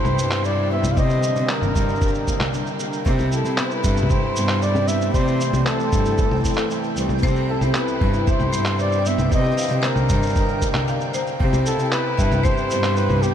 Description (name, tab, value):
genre	folktronica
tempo	115 BPM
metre	4/4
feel	straight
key	C major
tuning	A4 = 439 Hz
part	breathy flugelhorn	melody	0.0-13.3 s	G4 to F5	-25 LUFS	left 1 dB	ping-pong delay
part	muted string quartet	sustained chords	0.0-13.3 s	C3 to E4	-30 LUFS	right 2 dB	none
part	fingerpicked twelve-string acoustic guitar	arpeggios	0.0-13.3 s	C3 to A4	-27 LUFS	equal	wide subtle chorus, ping-pong delay
part	electronic congas, shaker and handclaps	drums	0.0-13.3 s	none	-25 LUFS	equal	none
part	flickering grainy texture	texture	0.0-13.3 s	G5	-35 LUFS	right 3 dB	built-in reverb
part	warm cello	bass	0.2-13.3 s	C2 to C3	-24 LUFS	equal	tube saturation
part	electronic kick drum	drums	1.0-12.6 s	none	-22 LUFS	equal	none
part	marimba with hard mallets	second line	7.2-12.7 s	C5 to F5	-31 LUFS	left 3 dB	none
room	moderate huge ambient reverb, RT60 8.5 s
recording	dreamy mix soaked in reverb, faint mains hum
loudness	-18 LUFS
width	side -9 dB against mid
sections	0.0-13.3 A section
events	none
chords	0.0 Cmaj7; 1.0 Ebmaj7; 3.1 Cmaj7; 5.1 C6; 7.2 Cmaj7; 9.3 Ebmaj7; 11.4 Cmaj7